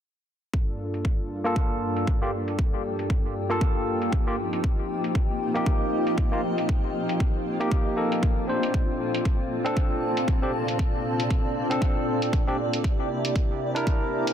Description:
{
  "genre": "deep house",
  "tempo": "117 BPM",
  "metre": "4/4",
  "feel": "swing 57% on 16ths",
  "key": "G minor",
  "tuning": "A4 = 440 Hz",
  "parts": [
    { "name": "warm analog pad", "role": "sustained chords", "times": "0.5-14.3 s", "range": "G2 to A4", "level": "-31 LUFS", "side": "equal", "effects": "chorus, vintage 12-bit sampler grit, sidechain pumping" },
    { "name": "electronic hi-hat", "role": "drums", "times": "0.5-14.3 s", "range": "none", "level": "-36 LUFS", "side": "right 2 dB", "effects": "low-pass filter on hats, low-pass filter on room" },
    { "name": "electronic kick drum", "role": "drums", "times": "0.5-14.0 s", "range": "none", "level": "-24 LUFS", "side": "equal", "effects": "none" },
    { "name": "granular cloud pad", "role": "texture", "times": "2.4-14.3 s", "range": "Bb3 to Bb5", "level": "-31 LUFS", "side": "equal", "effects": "built-in reverb, sidechain pumping" },
    { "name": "barky tine electric piano", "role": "stabs", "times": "1.4-14.3 s", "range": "Bb3 to C5", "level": "-28 LUFS", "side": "equal", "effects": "sidechain pumping, low-pass filter, ping-pong delay" }
  ],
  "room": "light reverb, digital ambience",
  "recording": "dense, heavily limited modern master",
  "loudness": "-23 LUFS",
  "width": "side -9 dB against mid",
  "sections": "0.5-14.3 A section",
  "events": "filter sweep on analog synth pad 0.5-14.3",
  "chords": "0.5 Gm9; 4.4 F9sus4; 8.7 Bbmaj9; 12.8 C9"
}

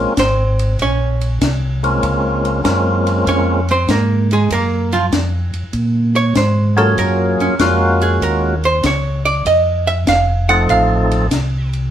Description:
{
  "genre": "soul jazz organ trio",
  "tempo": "97 BPM",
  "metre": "4/4",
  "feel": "swing 68% on 8ths",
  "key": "Bb minor",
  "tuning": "A4 = 440 Hz",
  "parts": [
    { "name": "percussive tonewheel organ", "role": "melody", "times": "0.0-11.3 s", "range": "F3 to A4", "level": "-16 LUFS", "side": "equal", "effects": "slow rotary speaker" },
    { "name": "mellow tonewheel organ", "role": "bass", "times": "0.0-11.9 s", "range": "F1 to Bb2", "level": "-17 LUFS", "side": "equal", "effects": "slow rotary speaker" },
    { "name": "archtop guitar, miked and amplified", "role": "accompaniment", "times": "0.2-11.7 s", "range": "F3 to Gb5", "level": "-17 LUFS", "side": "right 2 dB", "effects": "none" },
    { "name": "compact cocktail drum kit", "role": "drums", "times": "0.2-11.8 s", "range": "hi-hat, kick drum, ride cymbal, snare drum", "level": "-23 LUFS", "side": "left 1 dB", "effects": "none" }
  ],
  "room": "wet studio reverb, RT60 0.8 s",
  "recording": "band playing live in one room",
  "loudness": "-13 LUFS",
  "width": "side -10 dB against mid",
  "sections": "0.0-11.9 A section",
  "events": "hollow-body jazz guitar solo 0.0-11.9",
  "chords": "0.0 Bbm9; 4.5 Gbmaj7; 9.4 F7"
}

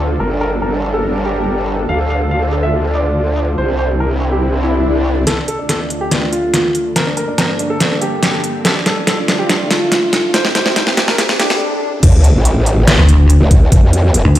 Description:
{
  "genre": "heavy wobble dubstep",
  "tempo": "142 BPM",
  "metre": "4/4",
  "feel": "half-time",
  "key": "D minor",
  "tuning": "A4 = 440 Hz",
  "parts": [
    { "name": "warm baby grand piano", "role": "melody", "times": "0.0-11.6 s", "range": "C4 to F5", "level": "-19 LUFS", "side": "equal", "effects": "vintage 12-bit sampler grit, low-pass filter, ping-pong delay" },
    { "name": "supersaw pad", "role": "sustained chords", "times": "0.0-11.6 s", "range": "C2 to Bb4", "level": "-22 LUFS", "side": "right 1 dB", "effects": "sidechain pumping, low-pass filter" },
    { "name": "growl bass", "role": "bass", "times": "0.0-5.2, 12.0-14.2 s", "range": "G1 to F2", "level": "-15 LUFS", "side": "equal", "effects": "chorus, overdrive" },
    { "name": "swell, riser and sub drop", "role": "sound effects", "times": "4.7-13.7 s", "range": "none", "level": "-20 LUFS", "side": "equal", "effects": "none" },
    { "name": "dubstep drum kit", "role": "drums", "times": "5.3-14.4 s", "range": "crash cymbal, hi-hat, snare drum", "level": "-15 LUFS", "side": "equal", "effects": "low-pass filter on snare, low-pass filter on hats, low-pass filter on cymbals" },
    { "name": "electronic kick drum", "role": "drums", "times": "12.0-13.8 s", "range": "none", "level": "-8 LUFS", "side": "equal", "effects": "none" },
    { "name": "pulsing pluck wobble bass", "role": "bass", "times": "13.0-14.4 s", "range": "D2", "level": "-7 LUFS", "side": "equal", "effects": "chorus, overdrive" }
  ],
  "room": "light reverb",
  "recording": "played on a big sound system in a bare room, large studio reverb, high-pass filter",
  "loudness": "-12 LUFS",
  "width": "side -13 dB against mid",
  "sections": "0.0-5.3 A section; 5.3-12.0 B section; 12.0-14.4 C section",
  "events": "swell 4.7-5.3, 11.2-12.0; build-up 5.3-12.0; drum fill 5.3-11.6; riser 5.3-11.6; filter sweep on supersaw synth 5.3-12.0; filter sweep on grand piano 5.3-12.0; filter sweep 5.3-12.0; stop 11.6-12.0; drop 12.0-14.4; impact 12.0-13.7",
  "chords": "0.2 Gmadd9; 1.9 Dm; 3.6 Cadd9; 5.3 Dm; 7.0 Gmadd9; 8.7 Dm; 10.3 Cadd9; 12.0 Dm"
}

